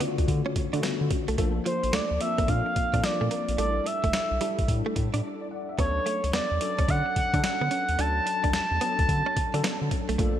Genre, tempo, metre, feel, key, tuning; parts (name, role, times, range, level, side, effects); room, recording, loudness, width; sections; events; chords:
R&B, new jack swing; 109 BPM; 4/4; swing 64% on 16ths; A4 = 440 Hz
expressive synth lead; melody; 0.0-9.9 s; C5 to A5; -28 LUFS; right 1 dB; chorus, digital delay
mellow tine electric piano; accompaniment; 0.0-10.4 s; C#3 to F#5; -32 LUFS; left 4 dB; ensemble chorus
direct-recorded clean electric guitar; riff; 0.0-10.3 s; F3 to D4; -34 LUFS; right 4 dB; analog chorus
boom bap sampler-style drum kit; drums; 0.0-10.4 s; hi-hat, kick drum, snare drum; -29 LUFS; equal
round analog bass; bass; 0.2-10.4 s; G1 to D3; -29 LUFS; equal
moderate lush hall reverb, RT60 2.3 s; bright 1980s-style digital production; -24 LUFS; side -10 dB against mid
0.0-10.4 A section
break 5.2-5.8
0.0 Dmaj7; 1.4 Bbmaj7; 3.6 A7sus4; 5.8 Dmaj7